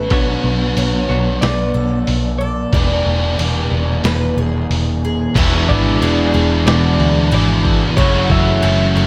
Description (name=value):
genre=rock, shoegaze and dream pop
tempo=92 BPM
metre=4/4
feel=straight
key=unclear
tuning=A4 = 440 Hz
part: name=electric guitar through a small old amp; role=melody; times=0.0-9.1 s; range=B4 to E5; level=-26 LUFS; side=equal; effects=subtle chorus, tape echo
part: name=picked twelve-string acoustic guitar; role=arpeggios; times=0.0-9.1 s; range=E4 to D5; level=-29 LUFS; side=equal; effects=subtle chorus, tape echo
part: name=biting overdriven guitar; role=riff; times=0.0-9.1 s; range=E2 to G#4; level=-22 LUFS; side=equal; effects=subtle chorus
part: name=direct-recorded clean electric guitar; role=riff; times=0.0-9.1 s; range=E2 to C#5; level=-24 LUFS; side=equal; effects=reverse reverb
part: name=vintage muted picked electric bass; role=bass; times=0.0-9.1 s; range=E1 to D2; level=-20 LUFS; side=equal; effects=none
part: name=lo-fi sampler-style drum kit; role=drums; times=0.1-9.1 s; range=crash cymbal, hi-hat, kick drum, snare drum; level=-22 LUFS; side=equal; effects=none
part: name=overdriven semi-hollow guitar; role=riff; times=5.4-9.1 s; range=E2 to F#3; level=-22 LUFS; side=equal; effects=none
room=light reverb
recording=none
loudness=-15 LUFS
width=mono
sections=0.0-5.4 A section; 5.4-9.1 B section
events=none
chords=0.1 Bmadd9; 2.7 E7; 8.0 F#m7